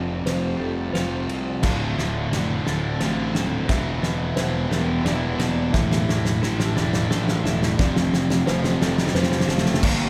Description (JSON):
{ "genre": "post-rock", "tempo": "88 BPM", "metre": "3/4", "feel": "straight", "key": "unclear", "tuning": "A4 = 441 Hz", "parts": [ { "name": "glassy FM pad", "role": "sustained chords", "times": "0.0-10.1 s", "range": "D3 to G5", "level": "-38 LUFS", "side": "equal", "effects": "none" }, { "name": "felt-muted upright piano", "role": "arpeggios", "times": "0.0-10.1 s", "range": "A4 to F5", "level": "-36 LUFS", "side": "equal", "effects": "none" }, { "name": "twelve-string electric guitar", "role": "arpeggios", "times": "0.0-9.8 s", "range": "D2 to A4", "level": "-35 LUFS", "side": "equal", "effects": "none" }, { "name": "sludgy distorted guitar", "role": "riff", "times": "0.0-10.1 s", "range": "D2 to A3", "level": "-30 LUFS", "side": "equal", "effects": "overdrive" }, { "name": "fuzz fingered electric bass", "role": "bass", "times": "0.0-10.1 s", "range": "D1 to C2", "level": "-30 LUFS", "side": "equal", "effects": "overdrive" }, { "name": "loose indie drum kit", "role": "drums", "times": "0.3-10.0 s", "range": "crash cymbal, kick drum, ride cymbal, snare drum", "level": "-27 LUFS", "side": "equal", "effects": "none" }, { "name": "thick fuzz guitar", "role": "riff", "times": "1.6-10.1 s", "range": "D2 to A3", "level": "-28 LUFS", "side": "equal", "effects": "distortion" }, { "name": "rich cello", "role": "melody", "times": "9.5-10.1 s", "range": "A3 to Bb3", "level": "-29 LUFS", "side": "equal", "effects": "none" } ], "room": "wet scoring stage reverb, RT60 2.1 s", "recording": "recorded in a church or concert hall", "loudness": "-22 LUFS", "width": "mono", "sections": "0.0-9.8 A section", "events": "build-up 0.0-9.8; drum fill 0.0-9.8", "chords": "0.0 Fadd9; 1.6 Dm7; 3.7 Em7b5; 5.7 A7sus4/E; 7.8 Fadd9", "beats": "0.27 0.95 | 1.64 2.32 3.00 | 3.69 4.37 5.05 | 5.74 6.42 7.10 | 7.78 8.47 9.15 | 9.83" }